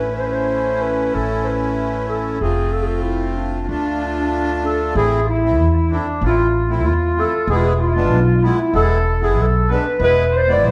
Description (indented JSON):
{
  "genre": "klezmer",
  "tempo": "95 BPM",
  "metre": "2/4",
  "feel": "straight",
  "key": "unclear",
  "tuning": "A4 = 440 Hz",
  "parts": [
    { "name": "breathy clarinet", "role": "melody", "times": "0.0-10.7 s", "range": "D4 to D5", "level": "-22 LUFS", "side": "equal", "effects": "none" },
    { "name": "accordion", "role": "accompaniment", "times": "0.0-10.7 s", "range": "G#3 to F4", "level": "-25 LUFS", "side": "equal", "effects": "light tremolo tuning" },
    { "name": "upright bass", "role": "bass", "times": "0.0-10.7 s", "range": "E1 to E2", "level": "-22 LUFS", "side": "equal", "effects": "none" },
    { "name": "accordion", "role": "second line", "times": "4.7-10.7 s", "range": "D4 to D5", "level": "-29 LUFS", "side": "equal", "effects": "none" }
  ],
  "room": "wet large studio reverb, RT60 1.3 s",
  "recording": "band playing live in one room",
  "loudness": "-18 LUFS",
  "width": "mono",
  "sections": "0.0-5.0 A section; 5.0-10.7 B section",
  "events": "none",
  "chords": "0.0 A; 2.4 F; 3.7 Dm; 5.0 Am; 7.5 E",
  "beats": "0.52 | 1.16 1.79 | 2.43 3.06 | 3.69 4.33 | 4.96 5.59 | 6.23 6.86 | 7.49 8.12 | 8.75 9.38 | 10.01 10.64"
}